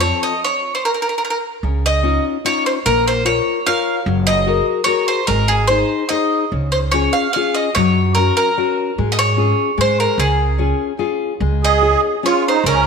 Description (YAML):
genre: italian folk, Italian serenade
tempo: 147 BPM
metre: 3/4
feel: straight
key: Db major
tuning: A4 = 440 Hz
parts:
  - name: bowl-back mandolin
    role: melody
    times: 0.0-12.9 s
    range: Ab4 to F5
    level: -18 LUFS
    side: right 2 dB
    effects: none
  - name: nylon-string guitar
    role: accompaniment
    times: 0.0-12.9 s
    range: Db3 to Db5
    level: -20 LUFS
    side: left 9 dB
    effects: none
  - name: upright bass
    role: bass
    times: 0.0-12.9 s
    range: Gb1 to Ab2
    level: -19 LUFS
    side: right 2 dB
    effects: none
  - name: musette accordion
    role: second line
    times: 11.6-12.8 s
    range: Db4 to Ab4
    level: -15 LUFS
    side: right 9 dB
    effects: none
room: wet echo chamber reverb, RT60 1.8 s, small room ambience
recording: 1960s-style stereo with parts hard left and right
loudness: -14 LUFS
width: side -5 dB against mid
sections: 0.0-1.6 A section; 1.6-12.9 B section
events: stop 0.4-1.6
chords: 0.4 N.C.; 1.6 Dbadd9; 2.9 Bbm; 4.1 Gbadd9; 5.3 Ab; 6.5 Db; 7.8 Gb; 9.0 Db/Ab; 9.8 Ab; 10.2 Db